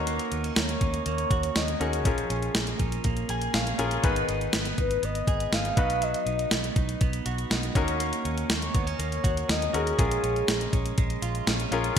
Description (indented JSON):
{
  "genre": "1980s-style pop",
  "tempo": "121 BPM",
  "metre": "4/4",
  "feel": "straight",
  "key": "unclear",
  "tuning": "A4 = 437 Hz",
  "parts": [
    { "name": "bright concert grand piano", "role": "accompaniment", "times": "0.0-12.0 s", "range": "B3 to G#5", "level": "-32 LUFS", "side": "left 4 dB", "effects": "none" },
    { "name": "direct-recorded clean electric guitar", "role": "riff", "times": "0.0-12.0 s", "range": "D#3 to G#4", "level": "-34 LUFS", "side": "right 6 dB", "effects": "lush chorus" },
    { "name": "vintage muted fingered electric bass", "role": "bass", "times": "0.0-12.0 s", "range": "G#1 to D#2", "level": "-31 LUFS", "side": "equal", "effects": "none" },
    { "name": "clean 12-bit digital drum machine", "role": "drums", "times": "0.1-12.0 s", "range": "crash cymbal, hi-hat, kick drum, snare drum", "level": "-27 LUFS", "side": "equal", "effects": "gated reverb" },
    { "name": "mellow horn-like synth lead", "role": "melody", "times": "0.6-12.0 s", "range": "G#4 to E#5", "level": "-30 LUFS", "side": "left 1 dB", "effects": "chorus, phaser, ping-pong delay" }
  ],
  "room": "moderate lush hall reverb, RT60 1.5 s",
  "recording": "bright 1980s-style digital production",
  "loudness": "-24 LUFS",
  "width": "side -8 dB against mid",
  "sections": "0.0-12.0 A section",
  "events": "grand piano fill 3.0-4.0",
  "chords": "0.0 D#m7; 2.1 A#m7; 4.0 G#m; 5.8 B; 7.8 D#m7; 10.0 A#m7",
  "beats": "| 0.07 0.56 1.06 1.55 | 2.05 2.55 3.04 3.54 | 4.03 4.53 5.03 5.52 | 6.02 6.51 7.01 7.50 | 8.00 8.50 8.99 9.49 | 9.98 10.48 10.98 11.47 | 11.97"
}